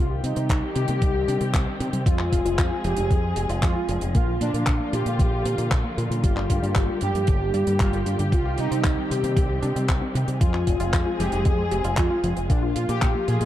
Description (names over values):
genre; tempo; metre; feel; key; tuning
italo disco; 115 BPM; 4/4; straight; C minor; A4 = 440 Hz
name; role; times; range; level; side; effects
analog synth brass; melody; 0.0-13.5 s; D4 to Ab4; -28 LUFS; equal; chorus, digital delay, shimmer reverb
muted studio string section; sustained chords; 0.0-13.5 s; D3 to Ab4; -30 LUFS; left 1 dB; shimmer reverb
analog pluck; arpeggios; 0.0-13.5 s; G2 to C5; -31 LUFS; left 1 dB; chorus, ping-pong delay, shimmer reverb
fingered electric bass with an envelope filter; bass; 0.0-13.5 s; F1 to C3; -27 LUFS; equal; none
damped 70s drum kit; drums; 0.2-13.5 s; handclaps, hi-hat; -32 LUFS; equal; small room ambience
electronic kick drum; drums; 0.5-13.1 s; none; -22 LUFS; equal; small room ambience
room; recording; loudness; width
light reverb, small room ambience; dark, warm production; -20 LUFS; side -12 dB against mid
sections
0.0-13.5 A section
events
filter sweep on synth arpeggio sound 0.0-13.5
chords
0.0 Cm; 2.1 Fm; 4.1 Bb; 6.2 Gm; 8.3 Cm; 10.4 Fm; 12.5 Bb5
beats
0.50 1.02 1.54 | 2.06 2.58 3.10 3.63 | 4.15 4.67 5.19 5.71 | 6.24 6.76 7.28 7.80 | 8.32 8.84 9.37 9.89 | 10.41 10.93 11.45 11.97 | 12.50 13.02